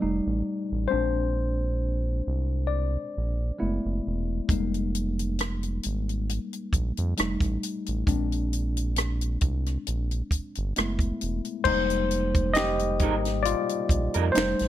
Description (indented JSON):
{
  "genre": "R&B, neo-soul",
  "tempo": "67 BPM",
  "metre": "4/4",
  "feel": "swing 53% on 16ths",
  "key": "F dorian",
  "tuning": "A4 = 439 Hz",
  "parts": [
    { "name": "tine electric piano", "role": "accompaniment", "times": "0.0-14.7 s", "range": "G3 to Eb5", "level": "-28 LUFS", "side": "moving between left 6 dB and right 1 dB", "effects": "auto-pan, plate reverb" },
    { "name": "round analog bass", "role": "bass", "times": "0.0-14.7 s", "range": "Fb1 to F2", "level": "-28 LUFS", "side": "right 1 dB", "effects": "none" },
    { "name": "compact cocktail drum kit", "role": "drums", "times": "4.5-14.7 s", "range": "crash cymbal, finger snaps, hi-hat, kick drum, rim click, snare drum", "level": "-28 LUFS", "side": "equal", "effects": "none" },
    { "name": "electric guitar through a small old amp", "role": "second line", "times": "13.0-14.3 s", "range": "Eb4 to Bb4", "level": "-30 LUFS", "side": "right 10 dB", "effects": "ensemble chorus, plate reverb" }
  ],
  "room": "light reverb",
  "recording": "none",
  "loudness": "-24 LUFS",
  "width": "side -12 dB against mid",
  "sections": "0.0-11.7 A section; 11.7-14.7 B section",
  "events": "tine electric piano solo 0.0-11.7, 11.7-14.7",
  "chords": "0.0 F7; 0.9 Bb9; 3.6 Gbm11; 4.5 Fm11; 7.2 F7; 8.1 Bb9; 10.8 Gbm11; 11.7 Fm11"
}